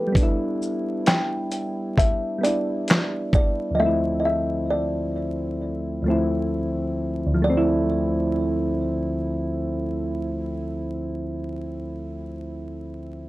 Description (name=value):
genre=lo-fi hip hop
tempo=66 BPM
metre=4/4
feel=swing 57% on 16ths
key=D dorian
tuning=A4 = 441 Hz
part: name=kalimba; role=melody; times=0.0-11.2 s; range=B4 to G5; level=-26 LUFS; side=equal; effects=low-pass filter, tape echo
part: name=soft electric-piano-like synth keys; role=accompaniment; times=0.0-13.3 s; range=D2 to G4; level=-24 LUFS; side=equal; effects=chorus, cassette tape, low-pass filter
part: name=dusty soul sampler-style drum kit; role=drums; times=0.2-3.6 s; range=handclaps, hi-hat, kick drum, shaker, snare drum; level=-19 LUFS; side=equal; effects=none
room=light reverb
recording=dry, gritty hardware recording, vinyl crackle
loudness=-22 LUFS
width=side -18 dB against mid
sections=0.0-7.4 A section; 7.4-11.1 B section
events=none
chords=0.1 Em7; 3.8 Dm9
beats=| 0.15 1.06 1.97 2.87 | 3.78 4.69 5.60 6.51 | 7.42 8.33 9.24 10.15